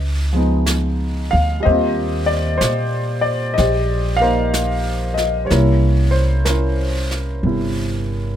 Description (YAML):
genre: jazz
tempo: 62 BPM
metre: 4/4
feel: swing 66% on 8ths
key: unclear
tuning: A4 = 445 Hz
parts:
  - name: warm concert grand piano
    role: accompaniment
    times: 0.0-8.4 s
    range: C3 to F5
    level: -19 LUFS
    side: equal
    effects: none
  - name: upright bass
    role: bass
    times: 0.0-8.4 s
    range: G1 to Bb2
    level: -18 LUFS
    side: equal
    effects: none
  - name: jazz brush drum kit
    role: drums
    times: 0.7-8.4 s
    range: brushed snare drum, hi-hat, snare drum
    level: -28 LUFS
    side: right 1 dB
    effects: none
room: little or no reverb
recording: close, detailed microphones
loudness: -16 LUFS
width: side -10 dB against mid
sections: 0.0-8.4 A section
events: none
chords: 0.0 Db9; 1.6 Eb69; 5.5 C7b9